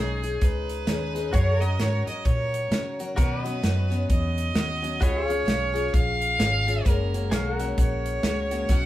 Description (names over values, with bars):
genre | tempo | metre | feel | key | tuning
honky-tonk and classic country | 130 BPM | 4/4 | swing 61% on 8ths | unclear | A4 = 444 Hz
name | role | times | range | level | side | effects
rich fiddle | second line | 0.0-8.9 s | G#4 to F#5 | -29 LUFS | right 1 dB | none
picked steel-string acoustic guitar | accompaniment | 0.0-8.9 s | F#2 to A#4 | -31 LUFS | left 4 dB | none
pedal steel guitar | sustained chords | 0.0-8.7 s | D#4 to F#5 | -36 LUFS | equal | none
vintage muted fingered electric bass | bass | 0.0-8.9 s | F#1 to C#3 | -27 LUFS | equal | none
natural country drum kit | drums | 0.2-8.8 s | hi-hat, kick drum, snare drum | -25 LUFS | equal | none
room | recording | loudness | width
wet small room reverb, RT60 0.5 s | band playing live in one room | -22 LUFS | side -14 dB against mid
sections
0.0-8.9 A section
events
fiddle solo 0.0-8.9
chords
0.0 C#sus2; 1.3 F#; 3.2 Badd9; 5.0 C#; 6.9 F#add9